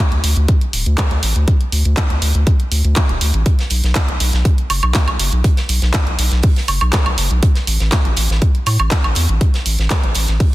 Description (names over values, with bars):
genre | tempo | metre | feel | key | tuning
progressive house | 121 BPM | 4/4 | straight | B minor | A4 = 440 Hz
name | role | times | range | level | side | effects
round analog bass | bass | 0.1-10.4 s | D1 to A2 | -15 LUFS | equal | sidechain pumping
pop drum kit | drums | 0.1-10.5 s | handclaps, hi-hat, woodblock | -20 LUFS | right 1 dB | none
electronic kick drum | drums | 0.5-10.5 s | none | -15 LUFS | equal | none
modern studio drum kit | drums | 3.5-10.5 s | hi-hat, snare drum | -29 LUFS | right 2 dB | none
room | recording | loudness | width
little or no reverb | dense, heavily limited modern master | -13 LUFS | side -17 dB against mid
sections
0.0-10.5 A section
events
none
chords
none